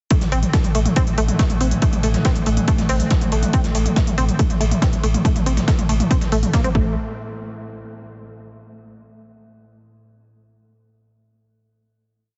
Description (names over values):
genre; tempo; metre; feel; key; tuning
driving peak-time techno; 140 BPM; 4/4; straight; A minor; A4 = 441 Hz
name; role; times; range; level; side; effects
tight sequenced synth; riff; 0.1-6.9 s; A3 to C4; -28 LUFS; equal; chorus, sidechain pumping, dub echo
metallic inharmonic drone; drone; 0.9-7.0 s; A2 to A3; -32 LUFS; equal; chorus, built-in reverb, sidechain pumping
dusty soul sampler-style drum kit; drums; 0.1-6.6 s; hi-hat, ride cymbal, snare drum; -35 LUFS; equal; overdrive, sidechain pumping on cymbals, high-pass filter on cymbals, high-pass filter on snare, sidechain pumping on hats, high-pass filter on hats
electronic kick drum; drums; 0.1-6.8 s; none; -22 LUFS; equal; none
techno drum kit; drums; 0.1-6.7 s; hi-hat, toms; -26 LUFS; equal; sidechain pumping on hats, sidechain pumping on toms
saturated sub bass; bass; 0.2-6.9 s; A1; -24 LUFS; equal; overdrive, sidechain pumping, low-pass filter
room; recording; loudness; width
digital ambience; heavily compressed radio sound, nothing above 7.9 kHz; -18 LUFS; mono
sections
0.1-7.0 groove; 7.0-8.7 final hit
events
none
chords
none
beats
| 0.11 0.54 0.96 1.39 | 1.82 2.25 2.68 3.11 | 3.54 3.96 4.39 4.82 | 5.25 5.68 6.11 6.54 | 6.96